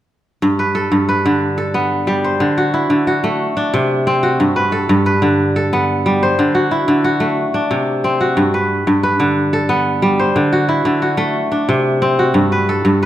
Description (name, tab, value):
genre	west african traditional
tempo	121 BPM (dotted quarters)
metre	12/8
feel	straight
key	G major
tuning	A4 = 440 Hz
part	kora	arpeggios	0.4-13.1 s	G2 to C5	-13 LUFS	equal	none
room	wet recital hall reverb, RT60 1.4 s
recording	none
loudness	-13 LUFS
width	side -12 dB against mid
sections	0.4-13.1 A section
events	none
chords	0.4 G; 2.4 D; 3.4 Csus2; 4.4 G; 6.4 D; 7.4 Csus2; 8.4 G; 10.4 D; 11.4 Csus2; 12.3 G